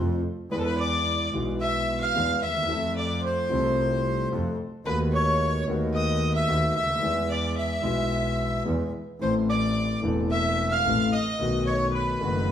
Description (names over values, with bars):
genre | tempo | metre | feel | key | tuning
tango | 110 BPM | 4/4 | rubato | unclear | A4 = 441 Hz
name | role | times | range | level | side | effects
dark concert grand piano | accompaniment | 0.0-12.5 s | E1 to A4 | -28 LUFS | left 2 dB | none
clear double bass | bass | 0.0-12.5 s | E1 to F2 | -30 LUFS | right 2 dB | none
bandoneon | melody | 0.5-12.5 s | A4 to F5 | -28 LUFS | right 1 dB | none
warm violin | second line | 0.5-12.5 s | A4 to F5 | -30 LUFS | left 2 dB | none
room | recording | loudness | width
wet stone room reverb, RT60 1.2 s | band playing live in one room | -23 LUFS | side -9 dB against mid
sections
0.0-12.5 A section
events
none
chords
0.0 F; 0.5 E; 2.7 F; 4.9 B7/D#; 7.0 E; 9.2 Am; 11.4 B7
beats
| 0.52 1.06 1.61 2.15 | 2.70 3.24 3.78 4.32 | 4.86 5.40 5.94 6.48 | 7.03 7.57 8.12 8.66 | 9.21 9.76 10.31 10.86 | 11.40 11.94 12.49